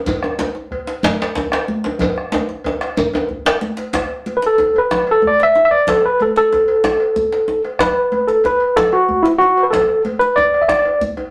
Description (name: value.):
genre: west african traditional, West African drum ensemble.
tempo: 124 BPM (dotted quarters).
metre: 12/8.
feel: straight.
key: unclear.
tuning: A4 = 440 Hz.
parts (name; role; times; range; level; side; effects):
bombo; percussion; 0.1-11.2 s; none; -29 LUFS; equal; none.
congas; percussion; 0.1-11.2 s; none; -29 LUFS; equal; none.
cowbell; percussion; 0.1-11.3 s; none; -31 LUFS; equal; none.
djembe; percussion; 0.1-11.3 s; none; -30 LUFS; equal; none.
djembe; percussion; 0.1-3.6 s; none; -21 LUFS; equal; none.
shekere; percussion; 0.1-3.2 s; none; -36 LUFS; equal; none.
overdriven tine electric piano; melody; 4.4-11.0 s; E4 to E5; -15 LUFS; equal; fast tremolo.
room: wet studio reverb, RT60 0.6 s.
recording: none.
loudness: -16 LUFS.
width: mono.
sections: 0.0-4.0 A section; 4.0-11.3 B section.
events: drum fill 2.0-4.0, 10.8-11.3.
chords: none.